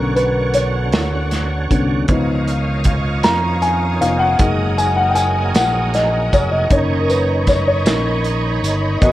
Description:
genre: slow gospel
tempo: 52 BPM (dotted quarters)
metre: 6/8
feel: straight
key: unclear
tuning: A4 = 441 Hz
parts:
  - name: dark upright piano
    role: accompaniment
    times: 0.0-9.1 s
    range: D3 to A#5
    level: -18 LUFS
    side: left 1 dB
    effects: none
  - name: bright tonewheel organ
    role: sustained chords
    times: 0.0-9.1 s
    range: D3 to C#5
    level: -25 LUFS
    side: right 3 dB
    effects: slow rotary speaker, chorus vibrato
  - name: clear studio string section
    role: sustained chords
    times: 0.0-9.1 s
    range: D#5 to D#6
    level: -28 LUFS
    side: equal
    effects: none
  - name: fingered electric bass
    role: bass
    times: 0.0-9.1 s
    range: E#1 to E#2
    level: -20 LUFS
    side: equal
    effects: none
  - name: modern studio drum kit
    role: drums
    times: 0.2-9.1 s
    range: hi-hat, kick drum, snare drum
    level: -20 LUFS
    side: right 1 dB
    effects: none
  - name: tambourine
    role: percussion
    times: 4.8-9.0 s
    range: none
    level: -32 LUFS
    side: right 4 dB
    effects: none
room: small room ambience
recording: worn, warbling old tape, cassette tape, warbly pitch drift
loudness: -14 LUFS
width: side -15 dB against mid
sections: 0.0-9.1 A section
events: upright piano solo 0.0-9.1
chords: 0.0 Bmadd9; 2.1 C#9; 4.4 F#69; 6.7 Bmaj9/F#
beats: 0.93 | 2.09 3.25 | 4.40 5.56 | 6.71 7.87 | 9.02

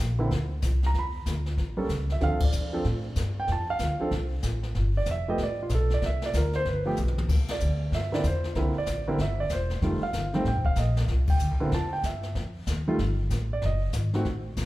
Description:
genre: jazz piano trio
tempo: 189 BPM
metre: 4/4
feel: swing 63% on 8ths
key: unclear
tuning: A4 = 439 Hz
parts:
  - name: upright bass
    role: bass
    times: 0.0-14.7 s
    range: Eb1 to A2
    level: -27 LUFS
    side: equal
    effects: none
  - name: warm concert grand piano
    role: melody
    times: 0.2-14.3 s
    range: D3 to B5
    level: -29 LUFS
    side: right 2 dB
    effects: none
  - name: jazz brush drum kit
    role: drums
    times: 0.3-14.7 s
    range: brushed snare drum, crash cymbal, hi-hat, kick drum, ride cymbal, snare drum, toms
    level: -32 LUFS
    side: left 2 dB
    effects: none
room: moderate recital hall reverb, RT60 1.7 s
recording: recorded in a church or concert hall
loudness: -24 LUFS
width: side -17 dB against mid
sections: 0.0-7.3 A section; 7.3-14.7 A section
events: band accent 2.4, 7.4, 11.2; drum fill 7.0-7.3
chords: 0.0 C7sus2; 0.9 E5; 1.6 A; 2.2 Dm7; 4.8 G9; 6.0 Csus2; 6.7 G; 7.3 Cadd9; 9.8 F9; 11.1 C; 12.4 F9; 13.6 F#m6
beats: 0.00 0.31 0.63 | 0.95 1.26 1.58 1.90 | 2.22 2.53 2.85 3.17 | 3.48 3.80 4.12 4.44 | 4.75 5.07 5.39 5.70 | 6.02 6.34 6.66 6.97 | 7.29 7.61 7.92 8.24 | 8.56 8.87 9.19 9.51 | 9.82 10.14 10.46 10.77 | 11.09 11.41 11.72 12.04 | 12.36 12.67 12.99 13.31 | 13.62 13.94 14.26 14.57

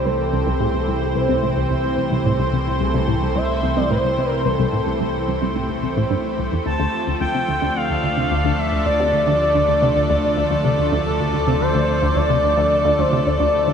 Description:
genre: ambient, sequencer-driven space music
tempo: 109 BPM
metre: 4/4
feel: straight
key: D minor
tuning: A4 = 440 Hz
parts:
  - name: expressive synth lead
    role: melody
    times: 0.0-13.7 s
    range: A4 to A5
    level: -21 LUFS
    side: left 1 dB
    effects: chorus, cassette tape, ping-pong delay
  - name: lush unison pad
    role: sustained chords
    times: 0.0-13.7 s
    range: E3 to D5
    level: -22 LUFS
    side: equal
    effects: chorus
  - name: fat analog bass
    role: bass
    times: 0.0-13.7 s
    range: C2 to D2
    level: -25 LUFS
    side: equal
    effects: none
  - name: tight sequenced synth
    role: riff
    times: 0.1-13.7 s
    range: C2 to C3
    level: -23 LUFS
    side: equal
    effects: chorus, ping-pong delay
room: wet spring reverb, RT60 2.6 s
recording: echo-heavy mix, lossy compression artefacts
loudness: -17 LUFS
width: side -7 dB against mid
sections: 0.0-13.7 A section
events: none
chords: 0.0 C6; 6.7 Dm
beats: | 0.05 0.60 1.15 1.70 | 2.25 2.81 3.36 3.91 | 4.46 5.01 5.56 6.11 | 6.66 7.21 7.76 8.31 | 8.86 9.41 9.96 10.51 | 11.06 11.61 12.16 12.71 | 13.26

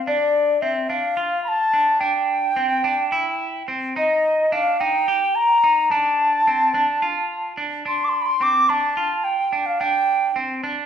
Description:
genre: progressive instrumental, progressive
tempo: 216 BPM (eighths)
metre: 7/8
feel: straight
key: unclear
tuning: A4 = 440 Hz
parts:
  - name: wooden flute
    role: melody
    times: 0.0-10.4 s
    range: D5 to D6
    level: -18 LUFS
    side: equal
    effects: none
  - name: clean electric guitar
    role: arpeggios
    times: 0.1-10.9 s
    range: C4 to G4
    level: -25 LUFS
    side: right 2 dB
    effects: none
room: wet large studio reverb, RT60 0.7 s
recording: band playing live in one room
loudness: -18 LUFS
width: side -8 dB against mid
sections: 0.1-10.9 A section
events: none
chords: 0.1 Dm; 2.0 Cadd9; 4.0 Eb; 5.9 Dm; 9.8 Csus2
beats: | 0.07 0.35 0.62 0.90 1.18 1.46 1.74 | 2.01 2.29 2.57 2.85 3.13 3.40 3.68 | 3.96 4.24 4.52 4.79 5.07 5.35 5.63 | 5.91 6.19 6.47 6.74 7.02 7.30 7.58 | 7.86 8.14 8.42 8.70 8.97 9.25 9.53 | 9.81 10.09 10.37 10.65

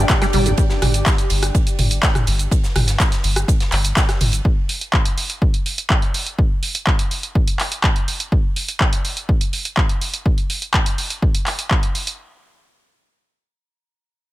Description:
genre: acid house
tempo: 124 BPM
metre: 4/4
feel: straight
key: unclear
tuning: A4 = 439 Hz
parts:
  - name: acid bass, saw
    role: riff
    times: 0.0-0.5 s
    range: G1 to G3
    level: -22 LUFS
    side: right 1 dB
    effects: wide subtle chorus, sidechain pumping, dub echo
  - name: round analog bass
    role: bass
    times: 0.0-4.4 s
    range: G1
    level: -20 LUFS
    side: equal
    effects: sidechain pumping
  - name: granular cloud pad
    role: texture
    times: 0.0-0.6 s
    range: D4 to G5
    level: -27 LUFS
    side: equal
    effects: built-in reverb, sidechain pumping
  - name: electronic kick drum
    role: drums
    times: 0.1-11.8 s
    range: none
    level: -18 LUFS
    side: equal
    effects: none
  - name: punchy analog drum machine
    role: drums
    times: 0.1-12.2 s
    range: cabasa, handclaps, hi-hat, rim click, toms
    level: -21 LUFS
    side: right 1 dB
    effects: none
  - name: tight metal drum kit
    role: drums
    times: 0.1-4.4 s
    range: ride cymbal, snare drum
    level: -32 LUFS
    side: right 2 dB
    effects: high-pass filter on cymbals, high-pass filter on snare, high-pass filter on room
room: light reverb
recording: none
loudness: -16 LUFS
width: side -16 dB against mid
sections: 0.0-12.2 A section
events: none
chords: 0.0 G5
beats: 0.10 | 0.58 1.06 1.55 2.03 | 2.51 3.00 3.48 3.97 | 4.45 4.93 5.42 5.90 | 6.38 6.87 7.35 7.84 | 8.32 8.80 9.29 9.77 | 10.26 10.74 11.22 11.71

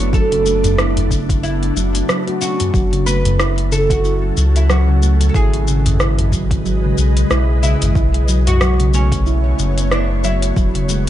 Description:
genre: organic downtempo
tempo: 92 BPM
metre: 4/4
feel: swing 57% on 16ths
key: unclear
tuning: A4 = 440 Hz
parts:
  - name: oud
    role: melody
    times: 0.0-11.1 s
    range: C#4 to C#5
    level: -23 LUFS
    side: right 1 dB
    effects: ping-pong delay
  - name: ethereal airy pad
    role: sustained chords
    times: 0.0-11.1 s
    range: E3 to D#5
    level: -24 LUFS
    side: equal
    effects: ensemble chorus, built-in reverb, sidechain pumping
  - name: warm sub bass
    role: bass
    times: 0.0-11.1 s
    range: E1 to C#2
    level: -16 LUFS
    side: equal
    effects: none
  - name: handpan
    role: arpeggios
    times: 0.1-11.1 s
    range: C#3 to F#4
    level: -21 LUFS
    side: right 2 dB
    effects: ping-pong delay
  - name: afro-pop drum kit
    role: drums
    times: 0.1-11.0 s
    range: hi-hat, rim click, shaker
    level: -23 LUFS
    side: left 1 dB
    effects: overdrive
  - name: electronic kick drum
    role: drums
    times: 0.1-10.7 s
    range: none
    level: -18 LUFS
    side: equal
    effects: overdrive
  - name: udu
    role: percussion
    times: 0.6-8.6 s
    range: none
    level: -21 LUFS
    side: left 1 dB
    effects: none
room: light reverb, digital ambience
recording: dark, warm production, nothing above 10.9 kHz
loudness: -13 LUFS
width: side -12 dB against mid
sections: 0.0-11.1 A section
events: none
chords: 0.0 Bm11; 2.7 F#m7; 5.3 G#m7; 8.0 B9sus4; 10.6 E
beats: | 0.13 0.79 1.44 2.09 | 2.74 3.39 4.05 4.70 | 5.35 6.00 6.66 7.31 | 7.96 8.61 9.26 9.92 | 10.57

